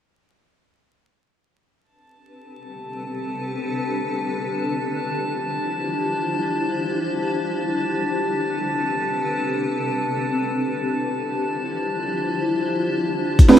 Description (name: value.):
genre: drum and bass, jungle.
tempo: free time.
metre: none.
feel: none.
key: A minor.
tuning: A4 = 440 Hz.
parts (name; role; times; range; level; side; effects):
granular cloud pad; sustained chords; 2.7-13.6 s; C4 to C5; -24 LUFS; left 1 dB; built-in reverb.
drifting glass-harmonics texture; texture; 2.6-13.6 s; A5; -28 LUFS; left 2 dB; chorus, built-in reverb.
jungle sampler-style drum kit; drums; 13.4-13.6 s; hi-hat, kick drum, snare drum; -10 LUFS; equal; overdrive, studio reverb.
deep mellow chord stab; stabs; 13.5-13.6 s; A3 to B4; -7 LUFS; right 3 dB; ensemble chorus, vintage 12-bit sampler grit.
room: light reverb, digital ambience.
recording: vinyl crackle.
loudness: -22 LUFS.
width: side -10 dB against mid.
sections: 1.8-13.6 A section.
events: none.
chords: 1.8 Am11; 4.7 Dm11; 7.6 Am11; 10.5 Dm11.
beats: free time.